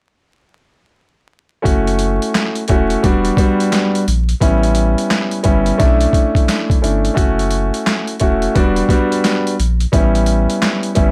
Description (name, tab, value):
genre	hip hop, boom-bap hip-hop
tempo	87 BPM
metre	4/4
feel	swing 63% on 16ths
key	unclear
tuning	A4 = 440 Hz
part	dark baby grand piano	accompaniment	1.6-11.1 s	G3 to F#4	-18 LUFS	equal	cassette tape
part	soft dub sub bass	bass	1.7-11.1 s	E1 to B1	-20 LUFS	equal	none
part	boom bap sampler-style drum kit	drums	1.7-11.1 s	handclaps, hi-hat, kick drum, snare drum	-19 LUFS	equal	overdrive
room	little or no reverb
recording	vinyl crackle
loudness	-15 LUFS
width	mono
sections	1.7-11.1 A section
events	none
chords	1.7 F#m7; 3.0 Em9; 4.4 A9; 5.8 Bm11; 7.2 F#m7; 8.6 Em9; 9.9 A9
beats	| 1.65 2.34 3.03 3.72 | 4.41 5.10 5.79 6.48 | 7.17 7.86 8.55 9.24 | 9.93 10.62